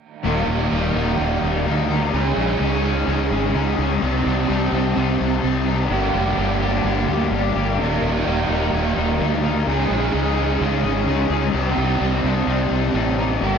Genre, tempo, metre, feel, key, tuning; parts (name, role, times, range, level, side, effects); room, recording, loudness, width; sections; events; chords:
rock; 127 BPM; 4/4; straight; A4 = 439 Hz
electric guitar through a small old amp; arpeggios; 0.2-13.6 s; Eb2 to Ab4; -27 LUFS; left 2 dB; wide subtle chorus, tape echo
crunchy overdriven guitar; riff; 0.2-13.6 s; Eb2 to Ab4; -23 LUFS; left 9 dB; lush chorus
overdriven electric guitar; riff; 0.2-13.6 s; Eb2 to Ab4; -23 LUFS; right 11 dB; reverse reverb
fuzz fingered electric bass; bass; 0.2-13.6 s; Eb1 to D2; -22 LUFS; equal; overdrive
light reverb; -18 LUFS; side -7 dB against mid
0.2-13.6 A section
0.2 Eb; 2.1 Dbsus2; 4.0 Cmadd9; 5.9 Gm; 7.8 Eb; 9.7 Dbsus2; 11.5 Cmadd9